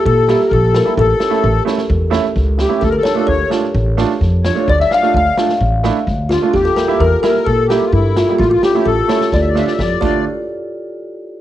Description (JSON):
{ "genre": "klezmer", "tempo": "129 BPM", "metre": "4/4", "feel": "straight", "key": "D harmonic minor", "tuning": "A4 = 441 Hz", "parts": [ { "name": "kalimba", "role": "melody", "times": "0.0-10.2 s", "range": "E4 to F5", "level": "-16 LUFS", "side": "left 1 dB", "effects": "cassette tape" }, { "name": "accordion", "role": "second line", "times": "0.0-10.2 s", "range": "E4 to F5", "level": "-21 LUFS", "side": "left 8 dB", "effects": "light tremolo tuning, cassette tape" }, { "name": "upright bass", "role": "bass", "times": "0.1-10.2 s", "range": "A1 to Bb2", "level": "-16 LUFS", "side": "equal", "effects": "none" }, { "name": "street-band drum kit", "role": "drums", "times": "0.1-10.1 s", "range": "crash cymbal, kick drum, snare drum", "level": "-23 LUFS", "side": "equal", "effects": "cassette tape" }, { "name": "warm upright piano", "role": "accompaniment", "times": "0.3-10.2 s", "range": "G3 to G4", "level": "-20 LUFS", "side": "right 8 dB", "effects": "cassette tape" } ], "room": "light reverb, small room ambience", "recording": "home recording on cassette", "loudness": "-12 LUFS", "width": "side -13 dB against mid", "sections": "0.0-10.3 A section; 10.3-11.4 B section", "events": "drum fill 9.3-10.3", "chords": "0.0 Edim; 1.0 A; 2.8 Dm; 6.5 Edim; 8.4 A; 9.3 Dm; 10.3 N.C." }